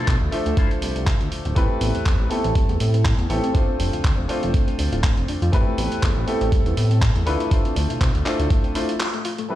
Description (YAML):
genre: nu-disco, nu disco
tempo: 121 BPM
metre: 4/4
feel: swing 55% on 16ths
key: unclear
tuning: A4 = 440 Hz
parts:
  - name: warm grand piano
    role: accompaniment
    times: 0.0-9.6 s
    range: F3 to E5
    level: -25 LUFS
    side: equal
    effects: analog delay
  - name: electric guitar with an envelope filter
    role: riff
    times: 0.0-1.5 s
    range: E4 to C5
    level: -31 LUFS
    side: left 3 dB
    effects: analog chorus, analog delay
  - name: chorused synth bass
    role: bass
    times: 0.0-8.5 s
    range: D1 to B2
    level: -22 LUFS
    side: equal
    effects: tube saturation, sidechain pumping
  - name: dusty soul sampler-style drum kit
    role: drums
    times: 0.1-9.5 s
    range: handclaps, hi-hat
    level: -30 LUFS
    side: right 1 dB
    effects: none
  - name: electronic kick drum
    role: drums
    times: 0.1-8.6 s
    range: none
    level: -20 LUFS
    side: equal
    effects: none
  - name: soft round pluck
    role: arpeggios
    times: 1.6-9.5 s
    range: G3 to D5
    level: -31 LUFS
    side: left 3 dB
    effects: chorus, sidechain pumping, tape echo
room: digital ambience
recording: played on a big sound system in a bare room, stone room reverb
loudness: -18 LUFS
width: side -14 dB against mid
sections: 0.0-9.5 A section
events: break 9.0-9.5; band accent 9.0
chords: 0.0 Dm9; 1.6 Am9; 3.5 F6; 5.5 Am9; 7.3 Dm9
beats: 0.08 0.57 1.07 | 1.56 2.06 2.56 3.05 | 3.55 4.04 4.54 5.04 | 5.53 6.03 6.52 7.02 | 7.51 8.01 8.51 9.00 | 9.50